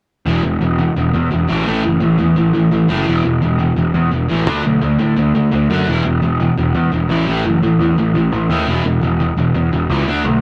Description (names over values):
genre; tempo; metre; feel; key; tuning
punk; 171 BPM; 4/4; straight; unclear; A4 = 442 Hz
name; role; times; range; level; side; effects
distorted electric guitar; riff; 0.3-10.4 s; E2 to D4; -18 LUFS; equal; distortion
fuzz picked electric bass; bass; 0.3-10.4 s; E1 to A2; -19 LUFS; equal; overdrive
room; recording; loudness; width
light reverb; rough rehearsal-room recording, warm saturation; -16 LUFS; mono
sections
0.3-10.4 A section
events
none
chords
0.3 E5; 1.7 A5; 3.1 E5; 4.5 D5; 5.9 E5; 7.3 A5; 8.7 E5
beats
| 0.26 0.61 0.96 1.31 | 1.66 2.01 2.36 2.71 | 3.06 3.41 3.77 4.12 | 4.47 4.82 5.17 5.52 | 5.87 6.22 6.57 6.92 | 7.27 7.62 7.97 8.32 | 8.67 9.02 9.37 9.72 | 10.07